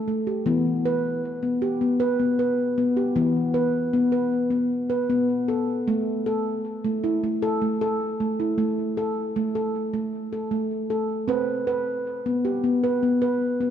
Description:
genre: world meditative, meditative tuned percussion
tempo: 155 BPM (eighths)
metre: 7/8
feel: straight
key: E minor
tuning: A4 = 438 Hz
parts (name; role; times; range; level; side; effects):
- handpan; solo; 0.0-13.7 s; E3 to B4; -22 LUFS; equal; tape echo
room: wet echo chamber reverb, RT60 2.7 s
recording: dark, warm production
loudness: -22 LUFS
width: side -9 dB against mid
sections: 0.5-13.7 A section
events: none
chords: 0.5 E5; 5.9 A5; 11.3 C5

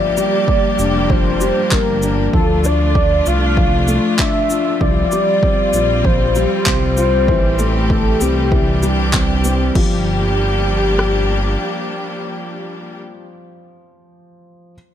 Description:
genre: piano and strings electronica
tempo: 97 BPM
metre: 4/4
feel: straight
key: G dorian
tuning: A4 = 439 Hz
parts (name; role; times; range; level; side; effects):
- warm velvety synth lead; melody; 0.0-13.0 s; G4 to F5; -20 LUFS; left 1 dB; chorus, ping-pong delay
- bright studio string section; sustained chords; 0.0-13.0 s; E3 to G4; -22 LUFS; left 2 dB; sidechain pumping
- felt-muted upright piano; riff; 0.0-14.7 s; E3 to F4; -20 LUFS; equal; ping-pong delay
- dark detuned saw bass; bass; 0.0-11.6 s; F1 to D2; -19 LUFS; equal; sidechain pumping
- deep house drum kit; drums; 0.2-9.9 s; crash cymbal, handclaps, shaker; -22 LUFS; equal; none
- deep house drum kit; drums; 0.5-11.1 s; kick drum, rim click; -18 LUFS; equal; none
room: light reverb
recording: none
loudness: -13 LUFS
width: side -10 dB against mid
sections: 0.0-9.8 A section; 9.8-12.2 B section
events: drop 0.0-9.8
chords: 0.0 Gm7; 2.3 Dm; 4.8 Csus4; 7.3 Am7; 8.5 Cadd9; 9.8 Gm7

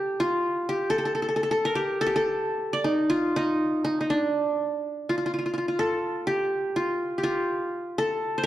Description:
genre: turkish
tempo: 247 BPM (eighths)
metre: 9/8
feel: straight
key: unclear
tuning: A4 = 440 Hz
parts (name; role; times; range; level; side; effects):
- qanun; solo; 0.0-8.5 s; D4 to D5; -24 LUFS; equal; none
room: wet recital hall reverb, RT60 1.6 s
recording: dark, warm production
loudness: -24 LUFS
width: side -13 dB against mid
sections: 0.0-5.3 A section; 5.3-8.5 B section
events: none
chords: none

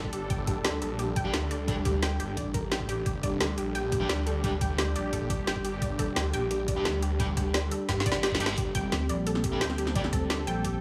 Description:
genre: dark technical drum and bass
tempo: 174 BPM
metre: 4/4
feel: straight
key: G minor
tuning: A4 = 440 Hz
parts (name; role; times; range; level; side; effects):
- sweeping resonant pad; sustained chords; 0.0-10.8 s; G3 to A4; -36 LUFS; equal; chorus, sidechain pumping
- analog pluck; arpeggios; 0.0-10.7 s; G4 to G5; -38 LUFS; equal; chorus, sidechain pumping, tape echo
- snarling distorted saw bass; bass; 0.0-8.9 s; G1 to G2; -35 LUFS; equal; distortion, tube saturation
- electronic kick drum; drums; 0.0-10.7 s; none; -34 LUFS; equal; overdrive, small room reverb
- drum and bass drum kit; drums; 0.1-10.7 s; hi-hat, snare drum; -34 LUFS; equal; overdrive, small room reverb
- fuzz guitar; stabs; 1.2-1.7, 4.0-4.5, 6.8-10.0 s; G3 to G4; -39 LUFS; equal; distortion, tape echo
- reverse cymbal; sound effects; 8.2-8.6 s; none; -42 LUFS; equal; none
- pulsing pluck wobble bass; bass; 8.9-10.8 s; Bb1 to D2; -34 LUFS; equal; chorus
room: light reverb, digital ambience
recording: studio ambience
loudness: -29 LUFS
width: mono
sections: 0.0-10.8 A section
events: drum fill 7.9-8.6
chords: 0.0 G5

